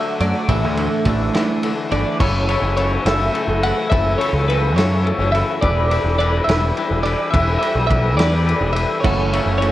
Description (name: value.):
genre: indie rock.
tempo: 70 BPM (dotted quarters).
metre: 6/8.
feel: straight.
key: unclear.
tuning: A4 = 440 Hz.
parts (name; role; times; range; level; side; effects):
twelve-string electric guitar; melody; 0.0-9.7 s; B4 to F#5; -22 LUFS; equal; phaser, slapback echo.
overdriven combo organ; sustained chords; 0.0-9.7 s; A4 to E6; -34 LUFS; right 1 dB; none.
twangy electric guitar; riff; 0.0-9.7 s; F#2 to B4; -23 LUFS; left 6 dB; spring reverb.
twelve-string electric guitar; riff; 0.2-2.2, 9.0-9.7 s; E3 to F#4; -22 LUFS; right 6 dB; wide subtle chorus, slapback echo.
growling picked electric bass; bass; 0.2-9.7 s; E1 to F#2; -20 LUFS; equal; overdrive.
loose indie drum kit; drums; 0.2-9.7 s; crash cymbal, kick drum, ride cymbal, snare drum; -22 LUFS; equal; none.
room: light reverb.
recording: worn, warbling old tape, cassette tape, warbly pitch drift.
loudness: -15 LUFS.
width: side -14 dB against mid.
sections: 0.0-2.2 A section; 2.2-9.7 B section.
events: none.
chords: 0.5 Asus4; 2.2 F#m7; 5.6 Em7; 9.0 F#m7.